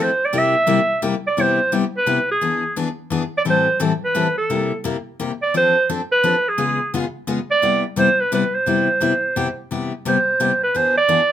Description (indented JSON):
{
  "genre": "jazz",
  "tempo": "173 BPM",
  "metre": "3/4",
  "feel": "swing 61% on 8ths",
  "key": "C major",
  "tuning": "A4 = 440 Hz",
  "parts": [
    { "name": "bright clarinet", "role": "melody", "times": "0.0-11.3 s", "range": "Ab4 to E5", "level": "-17 LUFS", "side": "right 2 dB", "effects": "none" },
    { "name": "picked steel-string acoustic guitar", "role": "accompaniment", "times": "0.0-11.2 s", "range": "A2 to A4", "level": "-22 LUFS", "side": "left 5 dB", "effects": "none" }
  ],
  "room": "light reverb",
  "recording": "minimal, uncompressed stereo recording",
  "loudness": "-16 LUFS",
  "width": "side -10 dB against mid",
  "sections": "0.0-1.4 A section; 1.4-9.7 B section; 9.7-11.3 C section",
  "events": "clarinet solo 9.7-11.3",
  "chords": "0.3 C7; 1.4 Cmaj7; 2.4 E7; 3.5 Am7; 4.5 C6; 5.5 F6; 6.6 Db7; 7.6 Cmaj7; 10.7 E7"
}